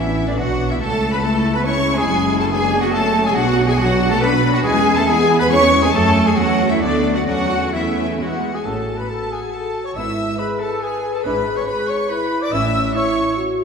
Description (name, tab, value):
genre	quick classical-period movement for symphony orchestra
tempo	140 BPM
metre	3/4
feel	rubato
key	A major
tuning	A4 = 440 Hz
part	rich chamber violin section	melody	0.0-13.4 s	D5 to E6	-28 LUFS	left 5 dB	none
part	clear oboe	second line	0.0-13.4 s	D4 to E5	-28 LUFS	equal	none
part	concert flute	second line	0.0-13.4 s	D5 to E6	-26 LUFS	left 1 dB	none
part	dark clarinet	second line	0.0-13.4 s	A3 to E5	-25 LUFS	right 2 dB	none
part	rich chamber violin section	second line	0.0-13.4 s	F#4 to C#6	-27 LUFS	left 4 dB	none
part	rich chamber viola section	accompaniment	0.0-12.7 s	F#3 to G#4	-25 LUFS	equal	none
part	mellow French horn section	sustained chords	0.0-13.6 s	D3 to B4	-22 LUFS	left 1 dB	none
part	rich studio double bass section	bass	0.0-12.9 s	F#1 to F#2	-24 LUFS	right 1 dB	none
part	rich symphonic cello section	bass	0.0-12.9 s	G#2 to C#5	-23 LUFS	right 2 dB	none
part	mellow trumpet	stabs	8.2-13.4 s	F#4 to E5	-26 LUFS	equal	none
room	wet scoring stage reverb, RT60 2.0 s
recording	heard from further back in the room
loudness	-15 LUFS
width	side -6 dB against mid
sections	0.0-8.7 A section; 8.7-13.6 B section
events	none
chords	0.0 E5/A; 0.8 A/C#; 2.1 F#m; 3.4 Bm; 4.6 E; 5.9 F#m; 6.8 Bm7/D; 7.3 A/E; 8.2 E; 8.7 A; 10.0 E/G#; 11.2 E7/G#; 12.5 A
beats	0.38 | 0.81 1.23 1.66 | 2.09 2.51 2.93 | 3.36 3.79 4.22 | 4.65 5.08 5.51 | 5.93 6.37 6.81 | 7.27 7.73 8.19 | 8.65 9.09 9.53 | 9.96 10.39 10.82 | 11.25 11.67 12.10 | 12.53 12.95 13.38